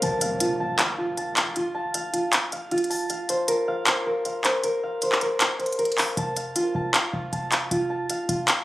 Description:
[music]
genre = hip hop, trap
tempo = 156 BPM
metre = 4/4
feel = half-time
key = F major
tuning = A4 = 440 Hz
[part]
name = concert harp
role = arpeggios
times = 0.0-8.6 s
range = F4 to A5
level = -25 LUFS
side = equal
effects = tape echo
[part]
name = trap drum kit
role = drums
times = 0.0-8.6 s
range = handclaps, hi-hat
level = -23 LUFS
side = equal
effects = none
[part]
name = impact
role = sound effects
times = 0.0-1.6 s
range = none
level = -35 LUFS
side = equal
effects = none
[part]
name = short 808-style bass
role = bass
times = 6.2-8.5 s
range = F1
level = -32 LUFS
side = equal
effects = none
[sound]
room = light reverb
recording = recorded on a phone in the room, studio ambience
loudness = -22 LUFS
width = side -17 dB against mid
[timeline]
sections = 0.0-8.6 A section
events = break 0.0-6.2; impact 0.0-1.6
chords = 0.0 F; 3.1 Bbsus2; 6.2 F

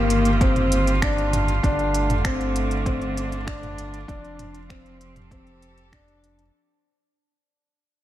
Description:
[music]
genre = piano and strings electronica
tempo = 98 BPM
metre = 4/4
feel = straight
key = unclear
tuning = A4 = 440 Hz
[part]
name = rich string quartet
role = sustained chords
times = 0.0-6.5 s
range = D3 to A4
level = -28 LUFS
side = right 3 dB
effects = none
[part]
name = felt-muted upright piano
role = riff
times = 0.0-6.4 s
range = Bb3 to D4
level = -25 LUFS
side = left 2 dB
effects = tape echo
[part]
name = round analog bass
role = bass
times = 0.0-6.5 s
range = F1 to G1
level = -25 LUFS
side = right 1 dB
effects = tube saturation, sidechain pumping
[part]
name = organic electronic drum kit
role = drums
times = 0.1-6.5 s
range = finger snaps, hi-hat, toms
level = -31 LUFS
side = right 1 dB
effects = studio reverb
[part]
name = electronic kick drum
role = drums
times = 0.4-6.0 s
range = none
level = -24 LUFS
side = right 1 dB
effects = overdrive, studio reverb
[sound]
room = light reverb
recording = none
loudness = -19 LUFS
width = side -13 dB against mid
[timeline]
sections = 0.0-6.5 A section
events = drop 0.0-6.5; fade-out 0.0-6.5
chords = 0.0 Eb/G; 1.6 Dm7/G; 4.1 Fadd9

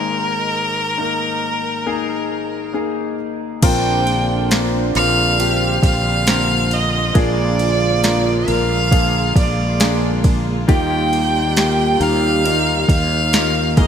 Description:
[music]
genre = pop ballad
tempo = 68 BPM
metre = 4/4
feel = straight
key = Bb mixolydian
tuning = A4 = 440 Hz
[part]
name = clear violin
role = melody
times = 0.0-13.9 s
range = Bb4 to G5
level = -20 LUFS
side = right 1 dB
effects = none
[part]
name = warm concert grand piano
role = accompaniment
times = 0.0-13.9 s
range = Ab1 to Bb4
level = -22 LUFS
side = left 4 dB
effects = wide subtle chorus
[part]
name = mellow French horn section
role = second line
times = 3.6-13.9 s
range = D3 to Ab4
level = -25 LUFS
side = right 6 dB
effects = none
[part]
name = warm studio string section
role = sustained chords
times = 3.6-13.9 s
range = D3 to Ab4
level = -28 LUFS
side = right 2 dB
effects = none
[part]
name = fretless electric bass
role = bass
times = 3.6-13.9 s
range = Ab1 to Eb2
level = -20 LUFS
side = equal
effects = lush chorus
[part]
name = smooth R&B drum kit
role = drums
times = 3.6-13.9 s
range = crash cymbal, kick drum, ride cymbal, snare drum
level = -18 LUFS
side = right 1 dB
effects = overdrive, gated reverb
[sound]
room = light reverb, studio ambience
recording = bright 1980s-style digital production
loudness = -14 LUFS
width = side -8 dB against mid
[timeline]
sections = 0.0-3.6 A section; 3.6-13.9 B section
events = none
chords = 0.0 Absus2; 3.6 Bbadd9; 7.2 Bb7; 10.7 Ebadd9

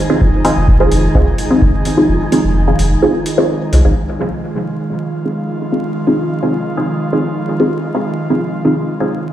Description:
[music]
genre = dub techno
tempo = 128 BPM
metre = 4/4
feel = straight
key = F minor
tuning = A4 = 440 Hz
[part]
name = airy breathy pad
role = sustained chords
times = 0.0-9.3 s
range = Eb3 to F4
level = -19 LUFS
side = right 1 dB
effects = chorus, sidechain pumping
[part]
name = filtered dub chord stab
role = stabs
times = 0.0-9.3 s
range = C4 to Ab4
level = -16 LUFS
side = equal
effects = phaser, sidechain pumping, dub echo
[part]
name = wind-like tuned noise texture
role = texture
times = 0.0-9.3 s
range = F3 to Ab4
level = -28 LUFS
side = right 1 dB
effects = built-in reverb, sidechain pumping
[part]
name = pure sine sub bass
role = bass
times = 0.2-3.9 s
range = F1 to C2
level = -13 LUFS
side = equal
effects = sidechain pumping
[part]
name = electronic kick drum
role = drums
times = 0.2-1.7 s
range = none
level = -13 LUFS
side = equal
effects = none
[part]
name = electronic hi-hat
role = drums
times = 0.4-3.8 s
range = none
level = -28 LUFS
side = equal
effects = overdrive
[sound]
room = moderate spring reverb, RT60 2.1 s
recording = played on a big sound system in a bare room, large studio reverb, vinyl crackle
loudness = -12 LUFS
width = side -12 dB against mid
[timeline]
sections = 0.0-4.0 A section; 4.0-9.3 B section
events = kick drops out 2.1-4.0; filter sweep on synth stab 4.0-9.3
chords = 0.0 Fm7

